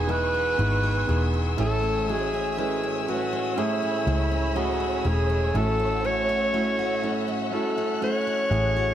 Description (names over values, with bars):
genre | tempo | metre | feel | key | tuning
pop | 61 BPM | 4/4 | straight | unclear | A4 = 436 Hz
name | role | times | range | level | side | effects
breathy alto saxophone | melody | 0.0-8.9 s | E4 to C#5 | -26 LUFS | equal | none
felt-muted upright piano | accompaniment | 0.0-8.9 s | A2 to B4 | -29 LUFS | right 3 dB | none
warm studio string section | sustained chords | 0.0-8.9 s | B4 to F#6 | -32 LUFS | equal | none
picked steel-string acoustic guitar | arpeggios | 0.0-8.9 s | E2 to G#4 | -34 LUFS | left 6 dB | none
vintage muted fingered electric bass | bass | 0.0-8.9 s | E1 to C#2 | -26 LUFS | equal | none
room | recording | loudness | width
light reverb, small room reverb | none | -22 LUFS | side -11 dB against mid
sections
0.0-8.9 A section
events
none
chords
0.0 Emaj7; 1.6 Amaj7; 5.5 F#m7/A